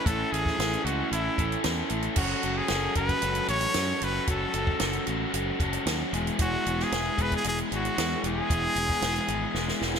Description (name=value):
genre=indie rock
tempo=114 BPM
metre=4/4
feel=straight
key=unclear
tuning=A4 = 440 Hz
part: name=brilliant trumpet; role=melody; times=0.0-10.0 s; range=E4 to C#5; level=-30 LUFS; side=equal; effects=ping-pong delay
part: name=crunchy overdriven guitar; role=riff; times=0.0-10.0 s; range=E3 to A4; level=-29 LUFS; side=left 1 dB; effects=none
part: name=growling fingered electric bass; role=bass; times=0.1-10.0 s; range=E1 to F#2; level=-32 LUFS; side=equal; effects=overdrive
part: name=compact cocktail drum kit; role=drums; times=0.1-10.0 s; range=crash cymbal, hi-hat, kick drum, snare drum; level=-30 LUFS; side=right 1 dB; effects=gated reverb
room=light reverb, small room ambience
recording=bright 1980s-style digital production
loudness=-25 LUFS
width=side -7 dB against mid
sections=0.0-10.0 A section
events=drum fill 9.6-10.0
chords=0.0 A; 2.2 F#m; 6.1 E